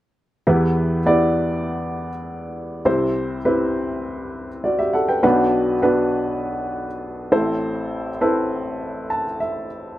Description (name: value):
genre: pop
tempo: 101 BPM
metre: 4/4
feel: straight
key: E minor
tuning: A4 = 441 Hz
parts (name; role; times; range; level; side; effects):
- warm upright piano; solo; 0.5-10.0 s; A1 to A5; -19 LUFS; equal; none
room: light reverb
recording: none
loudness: -18 LUFS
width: side -14 dB against mid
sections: 0.5-10.0 A section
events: upright piano fill 8.8-10.0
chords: 0.5 Em; 2.9 C; 5.2 Bm; 7.3 Am